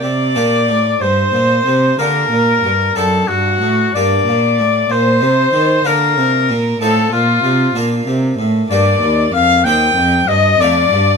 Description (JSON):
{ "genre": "classical, baroque-style sonata movement with continuo", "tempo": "63 BPM (dotted quarters)", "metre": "6/8", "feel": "straight", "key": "G minor", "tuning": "A4 = 440 Hz", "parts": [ { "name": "warm oboe", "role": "melody", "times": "0.0-11.2 s", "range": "F4 to G5", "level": "-15 LUFS", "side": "left 6 dB", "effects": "none" }, { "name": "rich violin", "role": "second line", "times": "0.0-11.2 s", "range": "F4 to G5", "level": "-19 LUFS", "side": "right 5 dB", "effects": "none" }, { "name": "harpsichord", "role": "accompaniment", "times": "0.0-11.2 s", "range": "Eb2 to A4", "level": "-21 LUFS", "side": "equal", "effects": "none" }, { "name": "warm cello", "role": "bass", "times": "0.0-11.2 s", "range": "Eb2 to Eb3", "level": "-16 LUFS", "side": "right 2 dB", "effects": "none" } ], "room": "light reverb", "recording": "none", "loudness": "-11 LUFS", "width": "side -5 dB against mid", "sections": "0.0-1.0 A section; 1.0-11.2 B section", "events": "none", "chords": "0.0 Gm; 3.0 D7/F#; 4.0 Gm; 4.9 Bb; 6.8 F7/A; 7.8 Bb; 8.7 Gm; 9.7 Cm/Eb; 10.6 F7" }